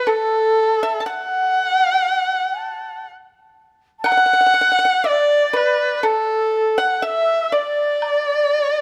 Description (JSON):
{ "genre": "chinese traditional, Chinese chamber ensemble", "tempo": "60 BPM", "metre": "4/4", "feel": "straight", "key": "D gong mode", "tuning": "A4 = 440 Hz", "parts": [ { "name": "dark erhu", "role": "melody", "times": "0.0-8.8 s", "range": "A4 to A5", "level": "-21 LUFS", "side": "equal", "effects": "none" }, { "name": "pipa", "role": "second line", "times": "0.0-8.8 s", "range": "A4 to A5", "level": "-26 LUFS", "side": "equal", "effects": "none" }, { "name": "xiao", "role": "second line", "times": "0.0-8.8 s", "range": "A4 to A5", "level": "-23 LUFS", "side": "equal", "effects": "none" }, { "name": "woodblock", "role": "percussion", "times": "4.1-8.3 s", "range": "none", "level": "-30 LUFS", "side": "equal", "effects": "none" } ], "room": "light reverb", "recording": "close, detailed microphones", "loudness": "-18 LUFS", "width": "mono", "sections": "0.0-8.8 A section", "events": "none", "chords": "none", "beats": "| 0.08 1.08 2.08 3.07 | 4.06 5.05 6.04 7.03 | 8.02" }